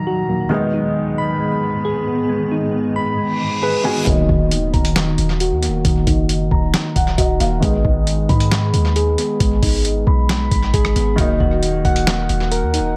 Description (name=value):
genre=hip hop, trap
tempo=135 BPM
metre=4/4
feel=half-time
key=Eb minor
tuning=A4 = 440 Hz
part: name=felt-muted upright piano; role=accompaniment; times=0.0-13.0 s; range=Eb3 to Ab5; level=-25 LUFS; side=equal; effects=low-pass filter
part: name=granular cloud pad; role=sustained chords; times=0.0-4.0 s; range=Eb2 to Cb4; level=-29 LUFS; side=equal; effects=built-in reverb
part: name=soft electric-piano-like synth keys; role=arpeggios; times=0.0-13.0 s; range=Eb3 to Cb6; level=-23 LUFS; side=equal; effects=chorus, low-pass filter, tape echo
part: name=downlifter and reverse cymbal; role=sound effects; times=3.3-4.1 s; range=none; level=-29 LUFS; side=equal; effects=none
part: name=warm 808-style bass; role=bass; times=4.1-13.0 s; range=Eb1 to Ab2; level=-22 LUFS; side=equal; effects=none
part: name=dusty soul sampler-style drum kit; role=drums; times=4.1-12.8 s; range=handclaps, hi-hat, kick drum, rim click, snare drum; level=-21 LUFS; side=equal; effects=tape echo
room=light reverb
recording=echo-heavy mix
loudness=-17 LUFS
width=mono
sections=0.0-4.1 A section; 4.1-13.0 B section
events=reverse cymbal 3.3-4.1; filter sweep 4.1-11.2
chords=0.0 Ebm; 0.5 Abm; 4.1 Ebm; 7.6 Abm; 11.2 Ebm